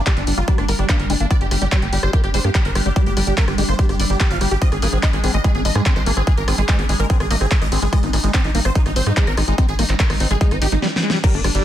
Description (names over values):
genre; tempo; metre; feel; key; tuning
psychedelic trance; 145 BPM; 4/4; straight; unclear; A4 = 436 Hz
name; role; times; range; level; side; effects
pulsing gated texture; sustained chords; 0.0-11.6 s; G3 to D4; -28 LUFS; equal; chorus, built-in reverb, sidechain pumping
dense compressed supersaw; melody; 0.1-11.6 s; D4 to F5; -26 LUFS; right 1 dB; phaser, sidechain pumping, digital delay
liquid acid bass; riff; 0.1-11.6 s; F3 to G4; -26 LUFS; moving between left 4 dB and right 3 dB; phaser, auto-pan, sidechain pumping, digital delay
big-room dance drum kit; drums; 0.1-11.6 s; crash cymbal, handclaps, hi-hat, rim click, snare drum; -24 LUFS; left 1 dB; none
electronic kick drum; drums; 0.1-11.3 s; none; -18 LUFS; equal; none
tight sequencer bass; bass; 0.2-11.6 s; G1 to Ab2; -20 LUFS; equal; none
granular cloud pad; texture; 11.6 s; G4; -34 LUFS; right 8 dB; none
room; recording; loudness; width
digital ambience; dense, heavily limited modern master; -15 LUFS; side -12 dB against mid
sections
0.0-11.2 A section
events
filter sweep on acid bass 0.0-11.2; drum fill 10.8-11.2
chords
0.0 G5; 4.6 Ab5